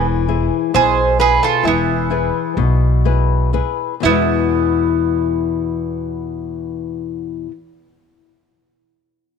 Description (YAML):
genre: greek folk, Greek bouzouki band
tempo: 119-139 BPM (eighths)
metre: 9/8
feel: straight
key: E major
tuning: A4 = 440 Hz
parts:
  - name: Greek bouzouki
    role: melody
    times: 0.0-7.5 s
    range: E4 to C5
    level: -22 LUFS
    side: right 4 dB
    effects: none
  - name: bowl-back mandolin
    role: second line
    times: 0.0-7.5 s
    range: B3 to G#4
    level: -20 LUFS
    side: right 10 dB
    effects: slapback echo
  - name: nylon-string guitar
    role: accompaniment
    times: 0.0-7.6 s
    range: E2 to B4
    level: -19 LUFS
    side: left 11 dB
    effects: none
  - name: upright bass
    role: bass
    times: 0.0-7.5 s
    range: E1 to E2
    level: -20 LUFS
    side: right 1 dB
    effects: none
room: light reverb, studio ambience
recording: 1960s-style stereo with parts hard left and right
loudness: -15 LUFS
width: side -6 dB against mid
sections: 0.0-4.0 A section; 4.0-8.6 B section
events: slowing down 0.0-4.0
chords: 0.0 E